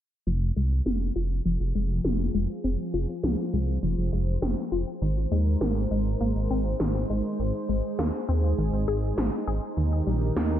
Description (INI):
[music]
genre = synthwave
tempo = 101 BPM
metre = 4/4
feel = straight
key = F minor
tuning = A4 = 440 Hz
[part]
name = lush unison pad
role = sustained chords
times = 0.3-10.6 s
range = Eb3 to C5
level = -32 LUFS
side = equal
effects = chorus
[part]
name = analog pluck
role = arpeggios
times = 0.3-10.6 s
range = Eb3 to Ab4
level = -32 LUFS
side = left 3 dB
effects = chorus, ping-pong delay
[part]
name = wide detuned saw bass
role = bass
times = 0.3-10.6 s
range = F1 to Eb2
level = -26 LUFS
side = equal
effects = chorus
[part]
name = electronic snare drum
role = drums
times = 0.9-10.5 s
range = none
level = -32 LUFS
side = equal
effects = overdrive, gated reverb
[sound]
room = light reverb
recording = low-pass filter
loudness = -24 LUFS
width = side -11 dB against mid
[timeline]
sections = 0.3-10.6 A section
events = filter sweep on detuned saw bass 0.3-10.6; filter sweep on analog synth pad 0.3-10.6; filter sweep on synth arpeggio sound 0.3-10.6; filter sweep 0.3-10.6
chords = 0.3 Fm; 5.0 Abadd9; 9.8 Eb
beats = | 0.27 0.86 1.45 2.05 | 2.64 3.24 3.83 4.42 | 5.02 5.61 6.21 6.80 | 7.39 7.99 8.58 9.18 | 9.77 10.37